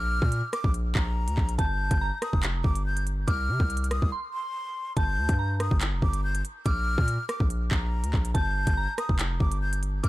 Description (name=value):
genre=hip hop, drill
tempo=142 BPM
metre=4/4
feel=half-time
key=G minor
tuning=A4 = 439 Hz
part: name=breathy jazz flute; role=melody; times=0.0-10.1 s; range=Bb5 to G6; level=-32 LUFS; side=left 1 dB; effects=digital delay
part: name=soft synth bell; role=second line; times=0.0-10.1 s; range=A5 to D6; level=-37 LUFS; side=right 2 dB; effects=chorus, digital delay
part: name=hard-hitting 808-style bass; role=bass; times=0.0-10.1 s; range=F1 to C3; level=-28 LUFS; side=equal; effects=none
part: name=drill drum kit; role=drums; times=0.2-10.1 s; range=handclaps, hi-hat, kick drum, rim click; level=-26 LUFS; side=equal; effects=none
room=little or no reverb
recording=dark, warm production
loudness=-24 LUFS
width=side -17 dB against mid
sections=0.0-10.1 A section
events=break 4.1-5.0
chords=0.0 Bb; 1.6 Gmadd9; 3.3 Csus2; 5.0 Gmadd9; 6.7 Bb; 8.3 Gmadd9